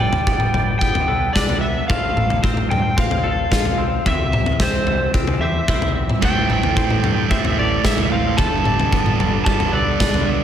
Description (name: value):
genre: post-rock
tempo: 111 BPM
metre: 4/4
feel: straight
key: unclear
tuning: A4 = 439 Hz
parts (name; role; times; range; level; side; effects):
- overdriven slide guitar; melody; 0.0-10.4 s; C5 to A5; -22 LUFS; left 1 dB; slapback echo, analog delay
- pedal steel guitar; sustained chords; 0.0-10.4 s; E3 to F5; -31 LUFS; left 1 dB; none
- twangy electric guitar; arpeggios; 0.0-10.4 s; A2 to A4; -29 LUFS; left 3 dB; slapback echo, analog delay
- twangy electric guitar; arpeggios; 0.0-10.4 s; A4 to E5; -31 LUFS; right 3 dB; ensemble chorus, slapback echo, analog delay
- growling fingered electric bass; bass; 0.0-10.4 s; G1 to G2; -25 LUFS; equal; overdrive
- big rock drum kit; drums; 0.1-10.3 s; kick drum, snare drum, toms; -19 LUFS; equal; none
- thick fuzz guitar; riff; 6.2-10.4 s; G2 to A3; -22 LUFS; right 10 dB; distortion, slapback echo
room: moderate lush hall reverb, RT60 1.9 s, small room ambience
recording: big arena sound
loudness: -16 LUFS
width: side -9 dB against mid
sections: 0.0-10.4 A section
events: none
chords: 0.0 Gadd9; 1.9 F/A; 4.1 C; 6.2 Am7; 8.4 Gadd9